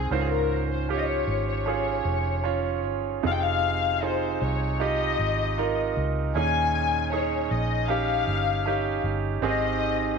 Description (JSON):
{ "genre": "pop ballad", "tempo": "77 BPM", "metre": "4/4", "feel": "straight", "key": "unclear", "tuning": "A4 = 440 Hz", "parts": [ { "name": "dark studio violin section", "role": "melody", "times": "0.0-10.2 s", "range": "Ab4 to Ab5", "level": "-28 LUFS", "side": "left 12 dB", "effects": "none" }, { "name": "bright concert grand piano", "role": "accompaniment", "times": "0.0-10.2 s", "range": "Ab2 to G5", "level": "-27 LUFS", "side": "right 12 dB", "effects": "none" }, { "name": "vintage muted fingered electric bass", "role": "bass", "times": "0.0-10.2 s", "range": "F1 to Eb2", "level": "-29 LUFS", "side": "left 1 dB", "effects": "none" } ], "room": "light reverb", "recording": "1960s-style stereo with parts hard left and right", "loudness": "-23 LUFS", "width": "side -5 dB against mid", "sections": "0.0-10.2 A section", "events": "none", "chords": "0.1 Dbmaj7; 3.2 Fm7; 6.4 Eb7sus4; 9.4 Abmaj7", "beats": "| 0.12 0.89 1.67 2.45 | 3.24 4.02 4.80 5.58 | 6.36 7.13 7.90 8.66 | 9.43" }